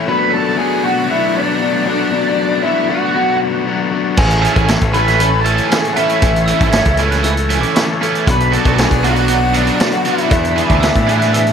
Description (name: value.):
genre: indie rock.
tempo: 117 BPM.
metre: 4/4.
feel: straight.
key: A major.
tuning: A4 = 440 Hz.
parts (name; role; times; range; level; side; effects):
lush unison pad; sustained chords; 0.0-11.5 s; A3 to D6; -28 LUFS; right 3 dB; chorus.
overdriven electric guitar; riff; 0.0-11.5 s; E2 to A4; -18 LUFS; left 7 dB; none.
octave-fuzz lead guitar; melody; 0.1-11.5 s; D4 to B4; -17 LUFS; right 1 dB; distortion, analog delay.
growling picked electric bass; bass; 4.2-11.5 s; G#1 to A2; -17 LUFS; equal; overdrive.
vintage drum kit; drums; 4.2-11.5 s; crash cymbal, hi-hat, kick drum, snare drum; -18 LUFS; equal; none.
overdriven electric guitar; riff; 4.4-11.4 s; E3 to G#4; -20 LUFS; right 10 dB; analog chorus, analog delay.
glockenspiel with hard plastic mallets; second line; 6.5-11.5 s; B5 to G#6; -26 LUFS; right 5 dB; none.
room: moderate studio ambience, RT60 0.5 s.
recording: none.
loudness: -12 LUFS.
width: side -7 dB against mid.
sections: 0.0-11.5 A section.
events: none.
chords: 0.1 Bm7; 4.2 Amaj7; 8.3 Bm; 10.3 E7sus4.